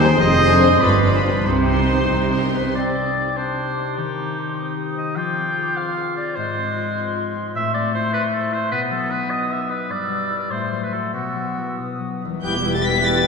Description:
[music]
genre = classical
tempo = 91-105 BPM (dotted quarters)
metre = 6/8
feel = rubato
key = C minor, E minor from 7.6 s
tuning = A4 = 441 Hz
[part]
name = rich studio violin section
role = melody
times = 0.0-2.8, 12.4-13.3 s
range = B5 to B6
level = -25 LUFS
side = left 2 dB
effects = none
[part]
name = bright clarinet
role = second line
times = 0.0-13.3 s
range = G3 to Ab4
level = -27 LUFS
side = left 2 dB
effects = none
[part]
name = mellow flute section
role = second line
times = 0.0-13.3 s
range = G4 to E6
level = -28 LUFS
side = left 2 dB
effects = none
[part]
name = warm oboe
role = second line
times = 0.0-13.3 s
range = F#4 to C6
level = -25 LUFS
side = right 1 dB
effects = none
[part]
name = warm studio violin section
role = second line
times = 0.0-2.8, 12.4-13.3 s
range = F4 to G5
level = -31 LUFS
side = left 1 dB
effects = none
[part]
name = warm studio viola section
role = accompaniment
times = 0.0-2.8, 12.4-13.3 s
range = G3 to G4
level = -28 LUFS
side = right 1 dB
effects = none
[part]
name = dark French horn section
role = sustained chords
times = 0.0-2.6, 12.4-13.3 s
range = Eb3 to G4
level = -26 LUFS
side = left 4 dB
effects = none
[part]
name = concert harp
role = arpeggios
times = 0.0-13.3 s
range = E2 to C5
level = -28 LUFS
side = left 6 dB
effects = none
[part]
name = warm trumpet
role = stabs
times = 0.0-2.5, 12.4-13.3 s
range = G4 to Eb5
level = -22 LUFS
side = right 2 dB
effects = none
[part]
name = rich symphonic cello section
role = bass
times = 0.0-2.7, 12.4-13.3 s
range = Eb2 to C3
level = -22 LUFS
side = right 2 dB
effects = none
[part]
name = warm studio double bass section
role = bass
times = 0.0-2.7, 12.4-13.3 s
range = E1 to Eb2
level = -23 LUFS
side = right 2 dB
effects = none
[part]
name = clear trombone section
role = sustained chords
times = 12.4-13.3 s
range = E3 to G3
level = -28 LUFS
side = right 4 dB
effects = none
[sound]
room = wet church reverb, RT60 3.0 s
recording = none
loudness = -18 LUFS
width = side -5 dB against mid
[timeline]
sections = 0.0-2.8 A section; 2.8-12.4 A section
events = none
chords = 0.2 Dm7b5/F; 0.8 G7; 1.5 Cm; 4.0 Cm/Eb; 5.2 Fm; 6.4 Fm/Ab; 7.6 Am; 8.7 B; 9.9 Em/G; 10.5 F#dim/A; 11.1 Bsus4; 11.8 B; 12.4 Em

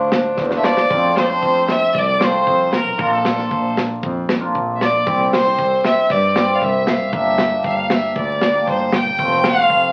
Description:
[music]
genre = klezmer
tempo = 116 BPM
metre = 4/4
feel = straight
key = F major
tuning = A4 = 438 Hz
[part]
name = rich violin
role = melody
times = 0.0-9.9 s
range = D4 to G5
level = -20 LUFS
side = equal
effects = none
[part]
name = rich fiddle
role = second line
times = 0.0-9.9 s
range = D4 to G5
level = -30 LUFS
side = equal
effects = none
[part]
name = cimbalom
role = accompaniment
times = 0.0-9.9 s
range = F3 to G4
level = -22 LUFS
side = equal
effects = none
[part]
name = clear double bass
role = bass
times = 0.0-9.9 s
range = E1 to G2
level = -28 LUFS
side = equal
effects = none
[part]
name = tight funk drum kit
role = drums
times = 0.1-9.8 s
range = kick drum, snare drum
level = -23 LUFS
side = equal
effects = none
[sound]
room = wet studio ambience, RT60 0.5 s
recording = very old 78 rpm record, vinyl crackle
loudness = -17 LUFS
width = mono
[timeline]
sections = 0.9-9.9 A section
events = drum fill 0.4-0.9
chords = 0.0 Dm; 0.9 F; 3.0 Bb; 5.1 C; 7.1 Gm; 9.2 F

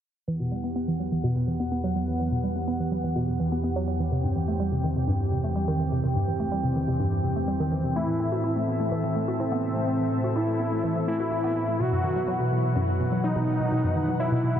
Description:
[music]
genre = techno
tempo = 125 BPM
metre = 4/4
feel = straight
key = E harmonic minor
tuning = A4 = 440 Hz
[part]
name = warm analog pad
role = sustained chords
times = 0.3-14.6 s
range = E2 to G5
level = -28 LUFS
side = equal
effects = chorus
[part]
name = woody wave-folded pluck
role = arpeggios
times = 0.3-14.6 s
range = F#2 to F#4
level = -27 LUFS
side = equal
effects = chorus, dub echo
[part]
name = fat analog lead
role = melody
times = 8.0-14.6 s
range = C4 to F#4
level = -28 LUFS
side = equal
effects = cassette tape, ping-pong delay
[sound]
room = moderate huge ambient reverb, RT60 7.1 s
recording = dense, heavily limited modern master, low-pass filter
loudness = -24 LUFS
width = side -9 dB against mid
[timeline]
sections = 0.3-14.6 A section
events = filter sweep 0.3-14.6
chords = 0.3 Emadd9; 4.1 C/E; 8.0 Am; 11.8 Bsus4

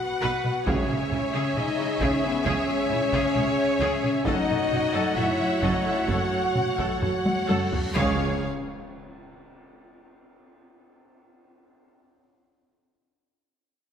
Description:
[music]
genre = cinematic, epic orchestral film score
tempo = 65 BPM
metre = 4/4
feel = straight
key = C# minor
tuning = A4 = 440 Hz
[part]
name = clear symphonic violin section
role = melody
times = 0.0-8.5 s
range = E5 to F#5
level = -33 LUFS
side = left 3 dB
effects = none
[part]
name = rich symphonic violin section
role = second line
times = 0.0-8.5 s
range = B4 to F#5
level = -32 LUFS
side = left 1 dB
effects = none
[part]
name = rich symphonic viola section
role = accompaniment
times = 0.0-8.5 s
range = E4 to F#5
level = -33 LUFS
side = right 1 dB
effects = none
[part]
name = dark French horn section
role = sustained chords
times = 0.0-8.4 s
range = B3 to F#4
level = -27 LUFS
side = left 2 dB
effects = none
[part]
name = rich symphonic string section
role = sustained chords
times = 0.0-8.5 s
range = G#3 to G#5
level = -32 LUFS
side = right 1 dB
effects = none
[part]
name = rich symphonic cello section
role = bass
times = 0.2-8.5 s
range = C#2 to C#3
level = -32 LUFS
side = right 2 dB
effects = none
[part]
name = warm symphonic double bass section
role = bass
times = 0.2-8.5 s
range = F#1 to C#2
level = -34 LUFS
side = right 3 dB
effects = none
[part]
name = taiko ensemble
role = drums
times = 0.4-8.2 s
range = none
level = -30 LUFS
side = equal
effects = none
[part]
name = timpani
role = percussion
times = 0.7-2.0, 8.0-8.4 s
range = C#3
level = -36 LUFS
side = equal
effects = none
[part]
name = reverse cymbal and impact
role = sound effects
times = 7.5-11.7 s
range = none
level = -44 LUFS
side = equal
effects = none
[sound]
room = wet scoring stage reverb, RT60 1.6 s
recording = none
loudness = -22 LUFS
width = side -8 dB against mid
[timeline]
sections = 0.0-8.0 A section; 8.0-11.7 B section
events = drum fill 7.0-8.0; reverse cymbal 7.5-8.0; impact 8.0-11.7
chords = 0.0 B5; 0.7 C#m; 4.3 F#m; 8.0 C#

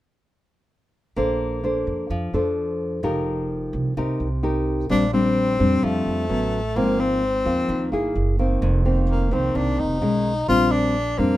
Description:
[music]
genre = bossa nova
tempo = 129 BPM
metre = 4/4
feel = straight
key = Bb major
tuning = A4 = 437 Hz
[part]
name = nylon-string guitar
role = accompaniment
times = 1.2-11.4 s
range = F2 to C5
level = -22 LUFS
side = left 1 dB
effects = none
[part]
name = upright bass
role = bass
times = 1.2-11.4 s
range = F1 to F2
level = -25 LUFS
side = right 1 dB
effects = none
[part]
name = breathy tenor saxophone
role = melody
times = 4.9-11.4 s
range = A3 to F4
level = -23 LUFS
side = left 2 dB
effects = none
[sound]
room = light reverb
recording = minimal, uncompressed stereo recording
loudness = -20 LUFS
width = side -15 dB against mid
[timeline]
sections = 1.2-4.9 A section; 4.9-11.4 B section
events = none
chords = 1.2 Bbmaj9; 3.0 F9sus4; 4.9 Bb69; 6.3 A69; 6.8 Ab69; 8.2 Gb9; 8.6 F7sus4; 10.0 B69; 10.5 Bb69

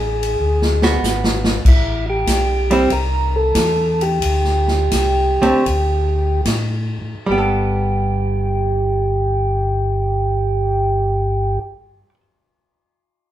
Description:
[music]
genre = soul jazz organ trio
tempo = 68-97 BPM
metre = 4/4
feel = swing 69% on 8ths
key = G major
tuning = A4 = 440 Hz
[part]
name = percussive tonewheel organ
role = melody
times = 0.0-11.6 s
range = E4 to Bb4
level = -19 LUFS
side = right 1 dB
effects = slow rotary speaker
[part]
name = mellow tonewheel organ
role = bass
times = 0.0-11.6 s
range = G1 to A2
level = -20 LUFS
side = equal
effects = overdrive, chorus vibrato, slow rotary speaker
[part]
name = swinging big-band drum kit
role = drums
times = 0.2-6.7 s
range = crash cymbal, hi-hat, kick drum, ride cymbal, snare drum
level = -20 LUFS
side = equal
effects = none
[part]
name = archtop guitar, miked and amplified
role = accompaniment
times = 0.8-12.2 s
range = D3 to A4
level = -19 LUFS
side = right 1 dB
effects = none
[sound]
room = moderate large studio reverb, RT60 0.9 s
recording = band playing live in one room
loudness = -15 LUFS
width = side -12 dB against mid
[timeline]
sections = 0.0-1.6 A section; 1.6-7.3 B section; 7.3-10.8 C section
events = drum fill 0.4-1.6; slowing down 1.6-7.3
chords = 0.0 Gmaj9 (rootless); 1.6 Am7; 4.2 D7sus4; 7.3 Gadd9

